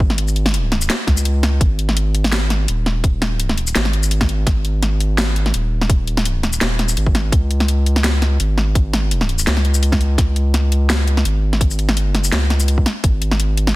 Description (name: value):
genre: half-time drum and bass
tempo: 168 BPM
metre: 4/4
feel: swing 55% on 16ths, half-time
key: unclear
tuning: A4 = 440 Hz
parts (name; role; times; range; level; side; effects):
- saturated sub bass; bass; 0.0-13.8 s; D#1 to C#2; -17 LUFS; equal; none
- electronic kick drum; drums; 0.0-13.1 s; none; -16 LUFS; equal; small room ambience
- drum and bass drum kit; drums; 0.1-13.7 s; hi-hat, shaker, snare drum; -20 LUFS; equal; overdrive, small room ambience
room: digital ambience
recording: dense, heavily limited modern master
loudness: -15 LUFS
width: side -19 dB against mid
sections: 0.0-1.6 A section; 1.6-13.8 A section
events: drop 0.0-1.6, 1.6-13.8; kick drops out 1.3-1.6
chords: none